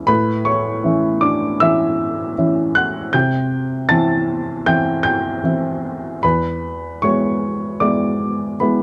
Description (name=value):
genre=neoclassical minimalist piano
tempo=78 BPM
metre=4/4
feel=rubato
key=unclear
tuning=A4 = 440 Hz
part: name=warm baby grand piano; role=solo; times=0.0-8.8 s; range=E2 to A6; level=-18 LUFS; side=equal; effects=none
room=light reverb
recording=dry, close 1970s-style studio recording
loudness=-18 LUFS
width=mono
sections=0.0-8.8 A section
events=none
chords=0.1 A; 3.1 C; 6.2 E